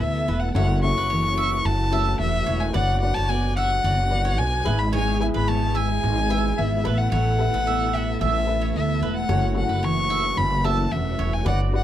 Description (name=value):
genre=acoustic pop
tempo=110 BPM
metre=4/4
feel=straight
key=unclear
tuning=A4 = 439 Hz
part: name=warm violin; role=melody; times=0.0-11.8 s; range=E5 to C#6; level=-25 LUFS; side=left 2 dB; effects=none
part: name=dark baby grand piano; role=accompaniment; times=0.0-11.8 s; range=B3 to F#5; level=-33 LUFS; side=left 7 dB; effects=none
part: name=fingerpicked steel-string acoustic guitar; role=accompaniment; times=0.0-11.8 s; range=F#2 to A4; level=-28 LUFS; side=equal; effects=double-tracked left and right
part: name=bright tonewheel organ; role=sustained chords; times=0.0-11.8 s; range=B2 to A4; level=-35 LUFS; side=right 1 dB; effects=overdrive, chorus vibrato, fast rotary speaker
part: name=upright bass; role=bass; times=0.0-11.8 s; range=E1 to D2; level=-24 LUFS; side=equal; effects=none
part: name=bowl-back mandolin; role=arpeggios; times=0.3-11.7 s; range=B4 to F#5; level=-31 LUFS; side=right 10 dB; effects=none
room=light reverb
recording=dry, close 1970s-style studio recording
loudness=-20 LUFS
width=side -12 dB against mid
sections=0.6-11.8 A section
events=none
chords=0.0 Asus2; 0.6 F#m7; 2.7 Bm/F#; 4.7 E/G#; 6.8 Asus2; 9.3 F#m7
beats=0.00 | 0.55 1.10 1.65 2.19 | 2.74 3.29 3.84 4.38 | 4.93 5.48 6.02 6.57 | 7.11 7.66 8.20 8.75 | 9.29 9.83 10.38 10.92 | 11.46